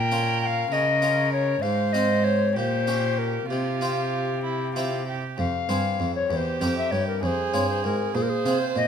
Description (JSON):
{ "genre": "classical, baroque-style sonata movement with continuo", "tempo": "65 BPM (dotted quarters)", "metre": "6/8", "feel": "straight", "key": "F minor", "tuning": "A4 = 438 Hz", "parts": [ { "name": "tenor recorder", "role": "melody", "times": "0.0-8.9 s", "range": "G4 to G5", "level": "-26 LUFS", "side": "left 6 dB", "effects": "none" }, { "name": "warm violin", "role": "second line", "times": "0.0-8.9 s", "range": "E4 to C5", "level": "-29 LUFS", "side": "right 8 dB", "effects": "none" }, { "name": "harpsichord", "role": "accompaniment", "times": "0.0-8.9 s", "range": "E2 to C5", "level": "-29 LUFS", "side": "equal", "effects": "none" }, { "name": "rich cello", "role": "bass", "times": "0.0-8.9 s", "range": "E2 to Db3", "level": "-28 LUFS", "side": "right 2 dB", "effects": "none" } ], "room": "light reverb", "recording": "close, detailed microphones", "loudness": "-22 LUFS", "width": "side -8 dB against mid", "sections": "0.0-5.4 A section; 5.4-8.9 A section", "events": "none", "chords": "0.0 Bbm; 1.6 Fm/Ab; 2.6 Gdim/Bb; 3.5 Csus4; 4.4 C; 5.4 Fm; 6.3 C7/E; 7.2 Fm" }